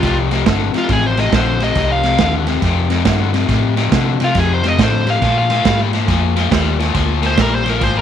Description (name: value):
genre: electric blues shuffle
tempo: 139 BPM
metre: 4/4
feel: swing 65% on 8ths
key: F mixolydian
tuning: A4 = 440 Hz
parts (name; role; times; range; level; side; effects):
- dark smooth lead guitar; melody; 0.0-8.0 s; F4 to F5; -20 LUFS; left 1 dB; overdrive
- crunchy overdriven guitar; riff; 0.0-8.0 s; F2 to G3; -19 LUFS; left 13 dB; harmonic tremolo
- hollow-body short-scale fingered electric bass; bass; 0.0-8.0 s; G1 to C3; -18 LUFS; equal; none
- raw garage drum kit; drums; 0.0-7.9 s; kick drum, ride cymbal, snare drum; -18 LUFS; right 5 dB; none
room: little or no reverb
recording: 1960s-style stereo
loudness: -13 LUFS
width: side -9 dB against mid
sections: 0.0-8.0 A section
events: none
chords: 0.0 F; 5.2 Bb7